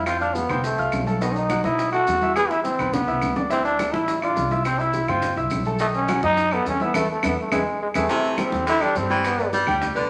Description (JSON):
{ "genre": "latin, salsa", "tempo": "209 BPM", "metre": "4/4", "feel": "straight", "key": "A minor", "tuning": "A4 = 437 Hz", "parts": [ { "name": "growling trombone", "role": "melody", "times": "0.0-9.5 s", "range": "G#3 to G#4", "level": "-25 LUFS", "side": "equal", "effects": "none" }, { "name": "clear concert grand piano", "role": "accompaniment", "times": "0.0-10.1 s", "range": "D#3 to F6", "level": "-28 LUFS", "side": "equal", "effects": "none" }, { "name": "upright bass", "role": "bass", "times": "0.0-10.1 s", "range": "A1 to B2", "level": "-32 LUFS", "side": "equal", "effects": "none" }, { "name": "bongos", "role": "percussion", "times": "0.1-10.1 s", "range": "none", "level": "-35 LUFS", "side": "equal", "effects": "none" }, { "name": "claves", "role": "percussion", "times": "0.1-9.8 s", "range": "none", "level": "-35 LUFS", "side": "equal", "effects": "none" }, { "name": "congas", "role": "percussion", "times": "0.1-10.1 s", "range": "none", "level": "-35 LUFS", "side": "equal", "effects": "none" }, { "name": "maracas", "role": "percussion", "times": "0.1-10.1 s", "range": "none", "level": "-44 LUFS", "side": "equal", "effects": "none" }, { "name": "edgy baritone saxophone", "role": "second line", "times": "8.1-10.1 s", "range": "C3 to G3", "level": "-27 LUFS", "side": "equal", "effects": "none" } ], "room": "wet large studio reverb, RT60 1.1 s", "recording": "none", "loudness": "-22 LUFS", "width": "mono", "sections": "0.0-8.1 A section; 8.1-10.1 B section", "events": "drum fill 2.4-3.5, 7.2-8.1; band accent 6.9-8.1", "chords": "0.1 F; 1.2 B7; 2.4 E5; 3.5 Dmadd9; 4.7 C; 5.8 B7; 6.9 Esus4; 7.5 E; 8.1 Am7; 9.2 G", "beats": "| 0.06 0.35 0.64 0.92 | 1.21 1.50 1.78 2.07 | 2.36 2.64 2.93 3.22 | 3.50 3.79 4.08 4.36 | 4.65 4.94 5.22 5.51 | 5.80 6.08 6.37 6.66 | 6.95 7.23 7.52 7.81 | 8.09 8.38 8.67 8.95 | 9.24 9.53 9.81" }